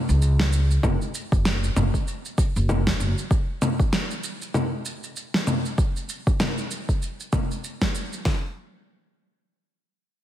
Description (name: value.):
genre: organic downtempo.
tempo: 97 BPM.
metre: 4/4.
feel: swing 58% on 16ths.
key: unclear.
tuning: A4 = 438 Hz.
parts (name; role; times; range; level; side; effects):
upright bass; bass; 0.1-3.1 s; F#1 to C#2; -21 LUFS; equal; sidechain pumping.
electronic shaker, snare drum and congas; drums; 0.1-8.2 s; none; -26 LUFS; equal; none.
deep house drum kit; drums; 0.8-8.4 s; hi-hat, kick drum, snare drum; -23 LUFS; equal; none.
room: light reverb.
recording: heavily compressed radio sound.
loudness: -22 LUFS.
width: side -12 dB against mid.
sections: 0.0-8.3 A section; 8.3-10.2 B section.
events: none.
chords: none.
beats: 0.22 | 0.83 1.45 2.07 2.69 | 3.31 3.93 4.55 5.16 | 5.78 6.40 7.02 7.64 | 8.26.